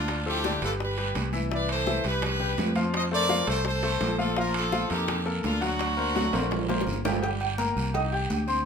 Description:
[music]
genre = latin, salsa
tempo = 168 BPM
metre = 4/4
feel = straight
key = G minor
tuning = A4 = 441 Hz
[part]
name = brilliant horn section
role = melody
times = 0.0-6.9 s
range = D4 to Eb5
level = -29 LUFS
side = equal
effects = none
[part]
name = bright concert grand piano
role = accompaniment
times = 0.0-8.7 s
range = D3 to G6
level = -30 LUFS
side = left 4 dB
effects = none
[part]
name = fingered electric bass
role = bass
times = 0.0-8.7 s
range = G1 to F2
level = -30 LUFS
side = right 1 dB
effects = none
[part]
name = bongos and cowbell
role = percussion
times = 0.1-8.5 s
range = none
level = -36 LUFS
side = left 6 dB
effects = none
[part]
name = congas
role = percussion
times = 0.1-8.7 s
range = none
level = -35 LUFS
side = equal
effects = none
[part]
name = guiro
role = percussion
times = 0.1-8.7 s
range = none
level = -40 LUFS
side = right 6 dB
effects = none
[part]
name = timbales and agogo bells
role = percussion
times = 0.1-8.5 s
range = none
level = -34 LUFS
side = right 7 dB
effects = none
[sound]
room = moderate studio reverb, RT60 0.8 s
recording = minimal, uncompressed stereo recording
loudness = -24 LUFS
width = side -6 dB against mid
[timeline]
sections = 0.0-7.2 A section; 7.2-8.7 B section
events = drum fill 6.2-7.2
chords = 0.1 Dmadd9; 0.8 G6; 1.5 Cmaj7; 2.9 F; 4.4 Bbmaj7; 5.8 Daug7; 7.2 Gm; 7.9 Cm

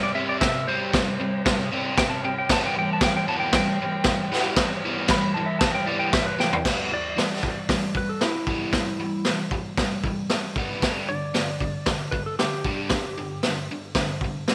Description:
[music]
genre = garage rock duo or trio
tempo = 115 BPM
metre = 4/4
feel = straight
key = E minor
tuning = A4 = 440 Hz
[part]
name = clean lap steel guitar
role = melody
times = 0.0-13.4 s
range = E4 to B5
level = -31 LUFS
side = equal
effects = none
[part]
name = biting overdriven guitar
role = riff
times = 0.0-14.5 s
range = G2 to C4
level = -31 LUFS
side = equal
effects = none
[part]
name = raw garage drum kit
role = drums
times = 0.4-14.5 s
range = crash cymbal, hi-hat, kick drum, snare drum, toms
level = -26 LUFS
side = equal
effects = none
[sound]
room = light reverb, studio reverb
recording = none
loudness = -24 LUFS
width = mono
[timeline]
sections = 0.0-6.7 A section; 6.7-14.5 B section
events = electric slide guitar solo 0.0-6.7; drum fill 6.4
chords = 0.0 C5; 2.5 Em; 10.8 G5

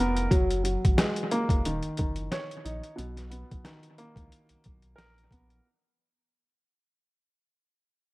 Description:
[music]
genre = hip hop, boom-bap hip-hop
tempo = 90 BPM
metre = 4/4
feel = swing 55% on 16ths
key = unclear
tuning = A4 = 440 Hz
[part]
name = dark upright piano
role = accompaniment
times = 0.0-5.7 s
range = B2 to Db5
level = -30 LUFS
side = equal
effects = cassette tape, high-pass filter, low-pass filter
[part]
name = warm sub bass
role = bass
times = 0.0-5.6 s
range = Eb1 to Db2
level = -33 LUFS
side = equal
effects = none
[part]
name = boom bap sampler-style drum kit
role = drums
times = 0.2-5.6 s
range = hi-hat, kick drum, rim click, snare drum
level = -26 LUFS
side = equal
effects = analog delay
[sound]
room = little or no reverb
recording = echo-heavy mix, vinyl crackle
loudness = -25 LUFS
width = side -21 dB against mid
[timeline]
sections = 0.0-5.6 A section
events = fade-out 0.0-5.6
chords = 0.3 Gbadd9; 1.6 Ebm7; 3.0 Bmaj7

